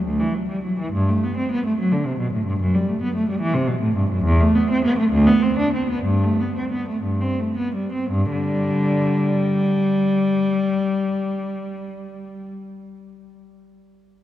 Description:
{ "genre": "classical, baroque-style suite movement for unaccompanied cello", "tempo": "54-75 BPM (dotted quarters)", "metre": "6/8", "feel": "rubato", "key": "G major", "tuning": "A4 = 438 Hz", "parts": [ { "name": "warm cello", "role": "solo", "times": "0.0-12.5 s", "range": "D2 to D4", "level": "-19 LUFS", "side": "equal", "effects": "none" } ], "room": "wet cathedral reverb, RT60 4.6 s", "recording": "dark, warm production", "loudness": "-18 LUFS", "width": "side -13 dB against mid", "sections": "0.0-8.1 A section; 8.1-12.4 B section", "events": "slowing down 3.4-8.1", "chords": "0.1 D; 0.9 G; 2.6 F#madd11; 4.3 E5; 5.1 Bm/D; 6.0 G; 8.1 G5", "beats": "0.05 | 0.93 1.78 | 2.60 3.41 | 4.25 5.12 | 6.05 7.04 | 8.11 9.17 | 10.23 11.29" }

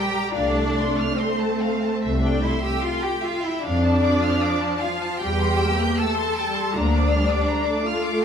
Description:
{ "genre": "classical, slow romantic movement for string orchestra", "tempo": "71-82 BPM", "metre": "4/4", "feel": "rubato", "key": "unclear", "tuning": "A4 = 440 Hz", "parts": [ { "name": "rich studio violin section", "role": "melody", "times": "0.0-8.2 s", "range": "E5 to G6", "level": "-30 LUFS", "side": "equal", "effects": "none" }, { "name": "clear studio violin section", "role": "second line", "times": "0.0-8.2 s", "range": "C5 to A5", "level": "-28 LUFS", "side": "left 3 dB", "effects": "none" }, { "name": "warm studio viola section", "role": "accompaniment", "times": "0.0-8.2 s", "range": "F3 to Bb3", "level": "-26 LUFS", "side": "right 1 dB", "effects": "none" }, { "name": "clear studio cello section", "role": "bass", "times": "0.0-8.2 s", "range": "C4 to A4", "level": "-26 LUFS", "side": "left 1 dB", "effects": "none" }, { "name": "clear studio double bass section", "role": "bass", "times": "0.4-7.4 s", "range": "C2 to F2", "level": "-24 LUFS", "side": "equal", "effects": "none" } ], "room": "wet stone room reverb, RT60 1.4 s", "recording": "minimal, uncompressed stereo recording", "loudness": "-20 LUFS", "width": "side -7 dB against mid", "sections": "0.0-8.2 A section", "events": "none", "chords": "0.3 F/C; 2.0 C; 3.6 Dm/F; 5.2 C/E; 6.8 Bb/D", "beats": "| 0.34 1.17 2.01 2.83 | 3.63 4.43 5.22 6.00 | 6.76 7.50" }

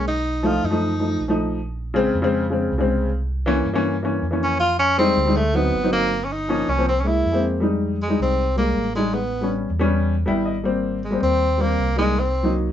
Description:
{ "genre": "jazz", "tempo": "159 BPM", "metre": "4/4", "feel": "straight", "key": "F minor", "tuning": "A4 = 440 Hz", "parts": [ { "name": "warm tenor saxophone", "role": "melody", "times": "0.0-1.4, 4.4-12.6 s", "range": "Ab3 to E#4", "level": "-21 LUFS", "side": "equal", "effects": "none" }, { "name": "dark upright piano", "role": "accompaniment", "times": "0.0-12.7 s", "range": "Db3 to G5", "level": "-21 LUFS", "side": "left 2 dB", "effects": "none" }, { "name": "fingered electric bass", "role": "bass", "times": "0.0-12.7 s", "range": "G1 to G2", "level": "-25 LUFS", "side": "right 1 dB", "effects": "none" } ], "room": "moderate studio reverb, RT60 0.6 s", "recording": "band playing live in one room, nothing above 7.7 kHz", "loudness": "-18 LUFS", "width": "side -10 dB against mid", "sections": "0.0-7.6 A section; 7.6-12.7 B section", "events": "tenor saxophone solo 7.6-12.7; upright piano fill 10.1-10.7", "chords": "0.1 B7#11; 1.6 Bbm7; 3.1 C7b9; 4.6 Fm9; 5.4 D7b9; 6.1 Gm7b5; 6.9 C7b13; 7.6 Fm7; 9.1 A9; 10.7 Abmaj9; 12.2 Cm7b5", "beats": "| 0.07 0.44 0.82 1.20 | 1.58 1.96 2.33 2.71 | 3.09 3.47 3.85 4.22 | 4.60 4.98 5.36 5.74 | 6.11 6.49 6.87 7.25 | 7.63 8.01 8.38 8.76 | 9.14 9.52 9.90 10.28 | 10.65 11.03 11.41 11.79 | 12.17 12.55" }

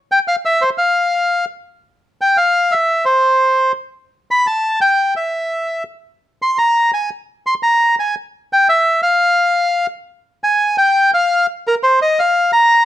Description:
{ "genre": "tango", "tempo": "172 BPM", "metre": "3/4", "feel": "rubato", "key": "unclear", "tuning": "A4 = 440 Hz", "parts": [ { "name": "bandoneon", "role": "solo", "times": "0.1-12.8 s", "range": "Bb4 to C6", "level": "-12 LUFS", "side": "equal", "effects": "none" } ], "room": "light reverb", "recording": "none", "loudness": "-13 LUFS", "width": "side -12 dB against mid", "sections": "0.0-1.9 A section; 1.9-10.3 A section; 10.3-12.8 B section", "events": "none", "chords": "none", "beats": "0.11 0.46 | 0.80 1.15 1.50 | 1.85 2.20 2.56 | 2.90 3.25 3.60 | 3.95 4.30 4.65 | 5.00 5.35 5.70 | 6.05 6.41 6.76 | 7.11 7.46 7.81 | 8.15 8.50 8.85 | 9.20 9.55 9.90 | 10.26 10.61 10.96 | 11.31 11.66 12.01 | 12.36 12.71" }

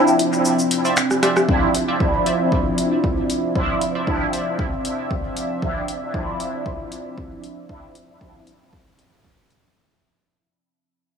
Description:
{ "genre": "dub techno", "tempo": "116 BPM", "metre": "4/4", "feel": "swing 54% on 16ths", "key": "D minor", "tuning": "A4 = 441 Hz", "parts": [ { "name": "deep dark ambient pad", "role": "sustained chords", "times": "0.0-9.7 s", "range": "F3 to E5", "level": "-25 LUFS", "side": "right 1 dB", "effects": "chorus, built-in reverb, sidechain pumping" }, { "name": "resonant sweep polysynth", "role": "stabs", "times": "0.0-8.4 s", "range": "F3 to E4", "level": "-22 LUFS", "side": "equal", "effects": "chorus, phaser, sidechain pumping, dub echo" }, { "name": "punchy analog drum machine", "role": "drums", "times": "0.1-9.6 s", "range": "cabasa, finger snaps, hi-hat, rim click", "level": "-24 LUFS", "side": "left 1 dB", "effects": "dub echo" }, { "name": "wavetable chord stab", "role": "riff", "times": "0.8-4.5 s", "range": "F4 to E5", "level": "-28 LUFS", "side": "right 2 dB", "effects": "sidechain pumping, dub echo" }, { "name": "electronic kick drum", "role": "drums", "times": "1.5-9.4 s", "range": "none", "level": "-24 LUFS", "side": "equal", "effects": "none" } ], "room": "light reverb", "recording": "dry, gritty hardware recording, small room reverb", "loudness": "-18 LUFS", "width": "side -6 dB against mid", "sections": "0.0-1.5 A section; 1.5-9.8 B section", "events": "break 0.0-1.5; drum fill 1.1-1.5; band accent 1.4; fade-out 1.5-9.8", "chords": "0.0 Dm9", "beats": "0.45 0.97 | 1.49 2.00 2.52 3.04 | 3.56 4.07 4.59 5.11 | 5.62 6.14 6.66 7.18 | 7.69 8.21 8.73 9.24" }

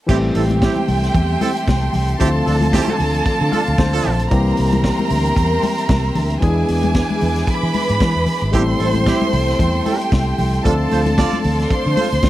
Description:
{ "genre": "disco", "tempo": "114 BPM", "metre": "4/4", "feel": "swing 56% on 16ths", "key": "unclear", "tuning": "A4 = 440 Hz", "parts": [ { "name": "warm studio violin section", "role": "second line", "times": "0.1-12.3 s", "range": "G4 to C6", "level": "-22 LUFS", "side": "right 2 dB", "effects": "none" }, { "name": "barky tine electric piano", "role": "accompaniment", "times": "0.1-12.3 s", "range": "D3 to F5", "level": "-22 LUFS", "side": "left 2 dB", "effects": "none" }, { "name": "clear studio string section", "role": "sustained chords", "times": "0.1-12.3 s", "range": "A4 to D6", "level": "-28 LUFS", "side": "equal", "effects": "none" }, { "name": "clear horn section", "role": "stabs", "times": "0.1-4.1, 8.5-12.1 s", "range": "C4 to D5", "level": "-22 LUFS", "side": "right 6 dB", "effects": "none" }, { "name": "fingered electric bass", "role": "bass", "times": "0.1-12.3 s", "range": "G#1 to E3", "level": "-19 LUFS", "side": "equal", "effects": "none" }, { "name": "vintage drum kit", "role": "drums", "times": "0.1-12.3 s", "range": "crash cymbal, hi-hat, kick drum, snare drum", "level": "-21 LUFS", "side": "equal", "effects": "none" }, { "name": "congas", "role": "percussion", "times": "0.1-12.3 s", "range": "none", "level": "-25 LUFS", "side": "left 3 dB", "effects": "none" } ], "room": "little or no reverb", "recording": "dry, close 1970s-style studio recording", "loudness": "-15 LUFS", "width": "side -14 dB against mid", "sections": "0.1-12.3 A section", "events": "tine electric piano fill 3.3-4.3", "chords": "0.1 Am7; 2.2 Dm7; 4.3 C7; 6.4 E7; 8.5 Am7; 10.6 Dm7", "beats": "| 0.09 0.62 1.15 1.68 | 2.20 2.73 3.26 3.79 | 4.31 4.84 5.37 5.90 | 6.42 6.95 7.48 8.01 | 8.54 9.06 9.59 10.12 | 10.65 11.18 11.70 12.23" }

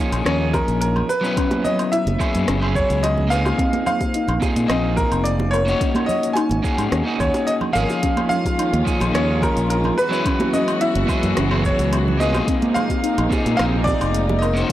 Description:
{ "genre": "sunset chillout", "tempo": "108 BPM", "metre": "4/4", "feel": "straight", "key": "unclear", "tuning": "A4 = 443 Hz", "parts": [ { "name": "electric guitar at the edge of break-up", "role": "accompaniment", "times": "0.0-14.7 s", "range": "F3 to Db5", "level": "-23 LUFS", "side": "equal", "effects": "auto-pan" }, { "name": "fingered electric bass", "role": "bass", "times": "0.1-14.6 s", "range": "F1 to Bb2", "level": "-21 LUFS", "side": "equal", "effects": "none" }, { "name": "smooth R&B drum kit", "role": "drums", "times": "0.1-14.7 s", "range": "hi-hat, rim click, shaker, woodblock", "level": "-29 LUFS", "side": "equal", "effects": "overdrive" }, { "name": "congas and bongos", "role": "percussion", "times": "0.1-14.4 s", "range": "none", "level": "-28 LUFS", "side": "right 2 dB", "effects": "none" }, { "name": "bright concert grand piano", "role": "melody", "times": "0.3-14.7 s", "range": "Bb4 to Ab5", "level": "-23 LUFS", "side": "right 1 dB", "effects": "tape echo" }, { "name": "soft round pluck", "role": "arpeggios", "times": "0.3-14.7 s", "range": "C4 to Db5", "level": "-28 LUFS", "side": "left 2 dB", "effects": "ensemble chorus, tape echo" }, { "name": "electronic kick drum", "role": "drums", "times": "0.5-14.7 s", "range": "none", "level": "-24 LUFS", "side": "equal", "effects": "overdrive" }, { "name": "dark chamber string section", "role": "sustained chords", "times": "8.0-14.7 s", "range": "C3 to Gb4", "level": "-25 LUFS", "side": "left 1 dB", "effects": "none" } ], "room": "light reverb, digital ambience", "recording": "dry, gritty hardware recording", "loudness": "-17 LUFS", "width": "side -13 dB against mid", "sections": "0.0-14.7 A section", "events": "none", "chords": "0.0 Eb9sus4; 1.1 Gb9sus4; 3.6 Bb9sus4; 5.8 Ab9sus4; 8.0 Eb9sus4; 10.0 Gb9sus4; 12.5 Bb9sus4", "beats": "0.26 0.81 | 1.37 1.92 2.48 3.04 | 3.59 4.15 4.70 5.26 | 5.81 6.37 6.92 7.48 | 8.04 8.59 9.15 9.70 | 10.26 10.81 11.37 11.92 | 12.48 13.04 13.59 14.15 | 14.70" }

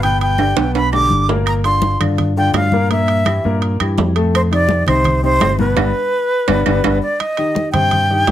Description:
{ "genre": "latin, salsa", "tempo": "168 BPM", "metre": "4/4", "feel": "straight", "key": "unclear", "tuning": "A4 = 440 Hz", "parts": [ { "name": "breathy bright concert flute", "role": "melody", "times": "0.0-8.3 s", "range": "B4 to D6", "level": "-17 LUFS", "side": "right 1 dB", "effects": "none" }, { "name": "warm grand piano", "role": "accompaniment", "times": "0.0-8.3 s", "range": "A2 to C5", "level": "-20 LUFS", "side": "left 3 dB", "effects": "none" }, { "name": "fingered electric bass", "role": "bass", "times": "0.0-8.3 s", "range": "G1 to G2", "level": "-18 LUFS", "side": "equal", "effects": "none" }, { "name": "congas", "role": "percussion", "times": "0.0-8.3 s", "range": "none", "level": "-23 LUFS", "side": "left 2 dB", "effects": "none" }, { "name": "timbales", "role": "percussion", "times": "0.0-8.3 s", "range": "none", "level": "-22 LUFS", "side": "right 8 dB", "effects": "none" }, { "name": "claves", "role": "percussion", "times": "0.4-6.9 s", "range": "none", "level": "-28 LUFS", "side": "right 6 dB", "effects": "none" } ], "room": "light reverb", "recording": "close, detailed microphones", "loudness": "-13 LUFS", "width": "side -12 dB against mid", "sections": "0.0-7.2 A section; 7.2-8.3 B section", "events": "drum fill 0.4-1.5, 6.5-7.2; band accent 5.8-7.2", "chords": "0.0 G; 1.5 Gm7; 2.9 Gm13; 4.3 F7; 5.8 G; 7.2 Cm", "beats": "| 0.04 0.40 0.76 1.12 | 1.48 1.83 2.19 2.55 | 2.91 3.27 3.63 3.98 | 4.34 4.70 5.06 5.41 | 5.77 6.13 6.49 6.84 | 7.20 7.56 7.91 8.27" }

